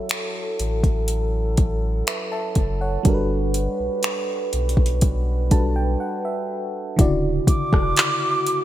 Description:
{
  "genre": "contemporary R&B",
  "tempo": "61 BPM",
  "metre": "4/4",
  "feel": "straight",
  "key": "unclear",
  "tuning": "A4 = 441 Hz",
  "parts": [
    { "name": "FM electric piano with auto-pan", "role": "accompaniment", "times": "0.0-8.6 s", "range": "C#3 to A5", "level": "-26 LUFS", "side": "right 1 dB", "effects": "none" },
    { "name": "dark brass ensemble", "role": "sustained chords", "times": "0.0-8.6 s", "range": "E3 to B4", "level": "-28 LUFS", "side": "equal", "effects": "none" },
    { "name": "smooth R&B drum kit", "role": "drums", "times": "0.1-8.6 s", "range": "finger snaps, handclaps, hi-hat, kick drum, rim click", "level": "-20 LUFS", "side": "equal", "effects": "gated reverb" },
    { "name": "warm sub bass", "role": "bass", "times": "0.6-7.9 s", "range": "D1 to B1", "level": "-23 LUFS", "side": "equal", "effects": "none" },
    { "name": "mellow silver concert flute", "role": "melody", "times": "7.5-8.6 s", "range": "D6", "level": "-23 LUFS", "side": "right 2 dB", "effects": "none" }
  ],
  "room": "light reverb",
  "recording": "bright 1980s-style digital production",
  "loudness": "-19 LUFS",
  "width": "side -13 dB against mid",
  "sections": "0.0-7.0 A section; 7.0-8.6 B section",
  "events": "FM electric piano fill 5.0-7.0; break 6.0-7.0",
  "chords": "0.0 F#m7; 3.1 Gmaj7; 7.0 Dmaj9",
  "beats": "0.10 1.08 2.07 | 3.05 4.04 5.02 6.00 | 6.99 7.97"
}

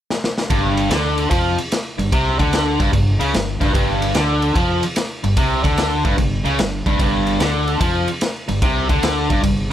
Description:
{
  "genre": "blues rock power trio and southern rock",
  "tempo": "148 BPM",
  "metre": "4/4",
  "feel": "swing 67% on 8ths",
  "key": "unclear",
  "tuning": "A4 = 440 Hz",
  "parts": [
    { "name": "raw garage drum kit", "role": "drums", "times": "0.1-9.6 s", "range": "kick drum, ride cymbal, snare drum", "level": "-20 LUFS", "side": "equal", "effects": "none" },
    { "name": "distorted electric guitar", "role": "riff", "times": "0.5-9.7 s", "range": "G2 to F3", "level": "-18 LUFS", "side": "equal", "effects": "overdrive" },
    { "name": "fuzz fingered electric bass", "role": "bass", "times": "0.5-9.7 s", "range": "G1 to F2", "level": "-22 LUFS", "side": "equal", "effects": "overdrive" }
  ],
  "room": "little or no reverb",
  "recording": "none",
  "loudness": "-16 LUFS",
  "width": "side -11 dB against mid",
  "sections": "0.5-9.7 A section",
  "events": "drum fill 0.1-0.5",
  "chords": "0.5 G5",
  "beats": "0.09 | 0.50 0.90 1.31 1.71 | 2.12 2.52 2.93 3.33 | 3.74 4.15 4.55 4.96 | 5.37 5.77 6.18 6.59 | 6.99 7.40 7.81 8.21 | 8.62 9.03 9.43"
}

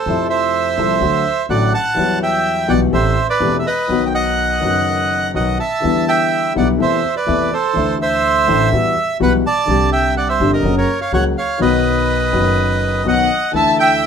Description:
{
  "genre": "tango",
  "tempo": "125 BPM",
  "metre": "4/4",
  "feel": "rubato",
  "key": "E minor",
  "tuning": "A4 = 440 Hz",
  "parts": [
    { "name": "bandoneon", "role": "melody", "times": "0.0-14.1 s", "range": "A4 to A5", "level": "-16 LUFS", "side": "right 3 dB", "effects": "none" },
    { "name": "dark concert grand piano", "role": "accompaniment", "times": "0.1-14.1 s", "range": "E1 to G4", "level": "-18 LUFS", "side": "left 5 dB", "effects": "none" },
    { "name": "upright bass", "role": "bass", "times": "0.1-14.1 s", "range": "E1 to F2", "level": "-23 LUFS", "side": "right 2 dB", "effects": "none" },
    { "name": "rich chamber violin section", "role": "second line", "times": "13.1-14.1 s", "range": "F#5 to A5", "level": "-16 LUFS", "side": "left 2 dB", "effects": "none" }
  ],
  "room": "moderate studio reverb, RT60 0.8 s",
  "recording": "minimal, uncompressed stereo recording",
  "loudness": "-14 LUFS",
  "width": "side -7 dB against mid",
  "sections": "0.0-14.1 A section",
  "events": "none",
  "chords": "0.1 Fmaj7; 1.0 D; 2.0 Emadd9; 2.9 Am7; 3.9 B; 5.8 Em7; 6.8 Am/E; 7.8 Dsus2; 8.7 Emadd9; 9.7 Csus2; 10.6 F#; 11.6 B; 13.5 Dsus2",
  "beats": "| 0.07 0.54 1.02 1.50 | 1.98 2.46 2.94 3.42 | 3.90 4.38 4.86 5.35 | 5.84 6.32 6.80 7.29 | 7.77 8.25 8.73 9.21 | 9.69 10.16 10.64 11.12 | 11.60 12.09 12.57 13.06 | 13.54 14.03"
}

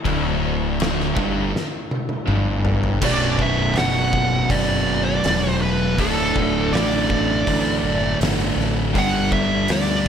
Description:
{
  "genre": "stoner and doom metal",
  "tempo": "81 BPM",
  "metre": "4/4",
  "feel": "straight",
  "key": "B minor",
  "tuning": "A4 = 440 Hz",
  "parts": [
    { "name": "mellow tonewheel organ", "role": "sustained chords", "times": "0.0-10.1 s", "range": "D3 to E5", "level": "-34 LUFS", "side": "equal", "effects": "none" },
    { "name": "thick fuzz guitar", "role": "riff", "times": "0.0-10.1 s", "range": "B1 to G3", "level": "-24 LUFS", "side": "left 8 dB", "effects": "distortion" },
    { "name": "thick fuzz guitar", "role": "riff", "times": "0.0-10.1 s", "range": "B1 to G3", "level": "-25 LUFS", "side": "right 9 dB", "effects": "distortion" },
    { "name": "fuzz fingered electric bass", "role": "bass", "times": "0.0-10.1 s", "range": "B0 to D2", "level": "-26 LUFS", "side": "equal", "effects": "overdrive" },
    { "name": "overdriven electric guitar", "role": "riff", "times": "0.1-10.1 s", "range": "B1 to G4", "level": "-27 LUFS", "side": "right 1 dB", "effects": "none" },
    { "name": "oversized low-tuned drum kit", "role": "drums", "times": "0.1-10.1 s", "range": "crash cymbal, hi-hat, kick drum, snare drum, toms", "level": "-25 LUFS", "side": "equal", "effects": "none" },
    { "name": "fuzz lead guitar", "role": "melody", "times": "3.1-10.1 s", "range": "A4 to F#5", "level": "-23 LUFS", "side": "right 3 dB", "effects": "wah, distortion, tape echo" }
  ],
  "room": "small room ambience",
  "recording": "none",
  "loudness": "-18 LUFS",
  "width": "side -8 dB against mid",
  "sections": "0.0-3.0 A section; 3.0-10.1 B section",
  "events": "drum fill 1.5-3.0",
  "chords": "0.0 D5; 3.0 Bm; 6.0 D; 9.0 G",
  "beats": "| 0.05 0.79 1.54 2.28 | 3.02 3.77 4.51 5.25 | 5.99 6.73 7.47 8.21 | 8.95 9.69"
}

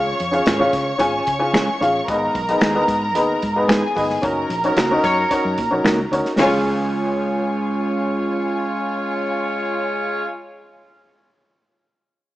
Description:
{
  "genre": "uptempo 1960s-style soul",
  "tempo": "111 BPM",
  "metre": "4/4",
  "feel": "straight",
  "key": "Db mixolydian",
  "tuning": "A4 = 440 Hz",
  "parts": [
    { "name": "warm symphonic violin section", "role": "second line", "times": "0.0-10.2 s", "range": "F4 to Db6", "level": "-24 LUFS", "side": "equal", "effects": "none" },
    { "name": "dark upright piano", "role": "accompaniment", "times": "0.0-10.3 s", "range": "Db2 to Ab5", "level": "-21 LUFS", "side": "left 1 dB", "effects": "none" },
    { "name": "vintage muted fingered electric bass", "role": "bass", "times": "0.0-10.2 s", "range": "Gb1 to Db3", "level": "-30 LUFS", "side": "equal", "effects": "none" },
    { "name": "natural country drum kit", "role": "drums", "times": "0.2-6.5 s", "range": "hi-hat, kick drum, snare drum, toms", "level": "-25 LUFS", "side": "equal", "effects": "none" },
    { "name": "mellow electric guitar", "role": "stabs", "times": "0.5-10.3 s", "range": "Ab3 to Bb4", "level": "-23 LUFS", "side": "right 2 dB", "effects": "none" },
    { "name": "finger snap", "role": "percussion", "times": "0.5-6.6 s", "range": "none", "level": "-26 LUFS", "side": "left 2 dB", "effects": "none" },
    { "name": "mellow horn section", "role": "second line", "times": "5.0-10.2 s", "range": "Ab3 to Db5", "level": "-25 LUFS", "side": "left 1 dB", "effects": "none" }
  ],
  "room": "moderate echo chamber reverb, RT60 2.1 s",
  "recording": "small speaker sound",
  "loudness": "-17 LUFS",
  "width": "side -15 dB against mid",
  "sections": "0.0-6.4 A section; 6.4-10.7 B section",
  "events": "band accent 4.2-6.4",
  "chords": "0.0 Db; 2.1 Abm; 4.2 Gb6; 6.4 Db",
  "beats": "0.47 1.00 1.54 | 2.08 2.62 3.16 3.70 | 4.23 4.77 5.31 5.85 | 6.39 6.93 7.47 8.01 | 8.54 9.08 9.62 10.16"
}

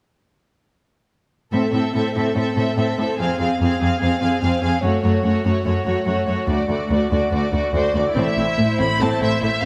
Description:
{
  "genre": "cinematic",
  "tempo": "144 BPM",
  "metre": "4/4",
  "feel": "straight",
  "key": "A harmonic minor",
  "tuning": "A4 = 439 Hz",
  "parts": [
    { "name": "warm symphonic violin section", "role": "melody", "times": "1.5-9.6 s", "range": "C5 to B5", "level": "-26 LUFS", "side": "equal", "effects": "none" },
    { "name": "rich symphonic violin section", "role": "second line", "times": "1.5-9.7 s", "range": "E4 to C5", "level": "-28 LUFS", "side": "equal", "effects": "none" },
    { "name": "warm symphonic viola section", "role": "accompaniment", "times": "1.5-9.7 s", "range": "A3 to C4", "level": "-25 LUFS", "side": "equal", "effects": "none" },
    { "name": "rich symphonic cello section", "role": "bass", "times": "1.5-9.7 s", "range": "D2 to A2", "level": "-24 LUFS", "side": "equal", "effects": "none" },
    { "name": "clear symphonic double bass section", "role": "bass", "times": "8.2-9.7 s", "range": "A1", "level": "-28 LUFS", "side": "equal", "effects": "none" }
  ],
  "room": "moderate scoring stage reverb, RT60 1.6 s",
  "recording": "none",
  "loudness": "-20 LUFS",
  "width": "mono",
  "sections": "1.5-8.2 A section; 8.2-9.7 B section",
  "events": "none",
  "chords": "1.5 Am; 3.2 Fm; 4.8 F#m; 6.5 D; 8.2 Am",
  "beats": "| 1.52 1.94 2.36 2.77 | 3.19 3.60 4.02 4.43 | 4.84 5.25 5.66 6.07 | 6.49 6.91 7.32 7.74 | 8.17 8.59 9.01 9.42"
}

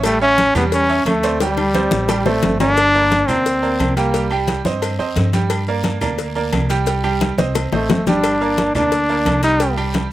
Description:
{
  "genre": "latin, salsa",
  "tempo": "176 BPM",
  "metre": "4/4",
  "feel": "straight",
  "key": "G minor",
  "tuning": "A4 = 442 Hz",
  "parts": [
    { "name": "bright concert grand piano", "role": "accompaniment", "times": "0.0-10.1 s", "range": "G3 to G5", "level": "-22 LUFS", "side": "right 5 dB", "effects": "slapback echo" },
    { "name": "upright bass", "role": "bass", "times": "0.0-10.1 s", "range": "G1 to G2", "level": "-23 LUFS", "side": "left 1 dB", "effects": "none" },
    { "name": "agogo bells and timbales", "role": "percussion", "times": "0.0-10.1 s", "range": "none", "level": "-30 LUFS", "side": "right 3 dB", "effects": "slapback echo" },
    { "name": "claves", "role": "percussion", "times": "0.0-9.9 s", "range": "none", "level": "-35 LUFS", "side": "left 5 dB", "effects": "none" },
    { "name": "congas", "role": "percussion", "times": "0.0-10.1 s", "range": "none", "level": "-23 LUFS", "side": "equal", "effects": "none" },
    { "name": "cowbell and bongos", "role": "percussion", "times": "0.0-10.1 s", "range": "none", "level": "-23 LUFS", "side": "left 6 dB", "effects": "slapback echo" },
    { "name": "guiro", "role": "percussion", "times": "0.0-10.1 s", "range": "none", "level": "-36 LUFS", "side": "left 6 dB", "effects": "none" },
    { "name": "maracas", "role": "percussion", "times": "0.0-10.1 s", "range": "none", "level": "-37 LUFS", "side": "left 6 dB", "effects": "none" },
    { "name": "bright trombone", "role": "melody", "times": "0.1-4.3, 7.7-9.8 s", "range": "G3 to Eb4", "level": "-16 LUFS", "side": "left 1 dB", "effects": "none" }
  ],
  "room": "little or no reverb",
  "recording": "recorded outdoors, with no room sound",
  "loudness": "-15 LUFS",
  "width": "side -14 dB against mid",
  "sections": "0.0-2.8 A section; 2.8-10.1 B section",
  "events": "drum fill 1.4-2.8, 7.2-8.2",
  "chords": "0.0 A7; 1.4 D7sus4; 2.8 Gm; 4.1 Cm; 5.5 Gm; 6.9 Cm; 8.2 Gm; 9.6 Cm",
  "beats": "| 0.04 0.38 0.72 1.06 | 1.41 1.75 2.09 2.43 | 2.77 3.11 3.45 3.80 | 4.14 4.48 4.82 5.16 | 5.50 5.85 6.19 6.53 | 6.87 7.21 7.55 7.89 | 8.24 8.58 8.92 9.26 | 9.60 9.94"
}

